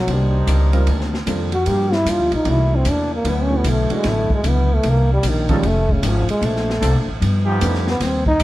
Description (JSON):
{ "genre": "jazz, big band swing", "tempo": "151 BPM", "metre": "4/4", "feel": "swing 65% on 8ths", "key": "unclear", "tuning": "A4 = 440 Hz", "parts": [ { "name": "warm trombone", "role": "melody", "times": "0.0-8.4 s", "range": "C#3 to G4", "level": "-20 LUFS", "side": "equal", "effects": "none" }, { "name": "upright bass", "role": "bass", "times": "0.0-8.4 s", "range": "F1 to G2", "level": "-18 LUFS", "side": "equal", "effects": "none" }, { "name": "vintage hollow-body jazz guitar", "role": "accompaniment", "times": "0.1-8.4 s", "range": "F2 to C5", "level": "-26 LUFS", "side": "left 3 dB", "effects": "none" }, { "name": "warm trombone section", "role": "sustained chords", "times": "0.1-8.0 s", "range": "D3 to C5", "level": "-28 LUFS", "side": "equal", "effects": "none" }, { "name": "open jazz drum kit", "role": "drums", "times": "0.1-8.4 s", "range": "hi-hat, kick drum, ride cymbal, snare drum", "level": "-26 LUFS", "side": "equal", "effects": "none" }, { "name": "warm grand piano", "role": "accompaniment", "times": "0.7-7.8 s", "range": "Eb3 to B4", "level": "-26 LUFS", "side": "right 3 dB", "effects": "none" } ], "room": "light reverb", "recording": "dark, warm production", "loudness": "-16 LUFS", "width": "side -16 dB against mid", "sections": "0.0-8.4 A section", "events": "trombone solo 0.0-8.4", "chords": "0.1 Cm9; 1.7 Gm7; 2.5 C9; 3.3 D69; 4.8 Cm9; 5.6 F7alt; 6.4 Bbmaj9; 7.2 G7b13" }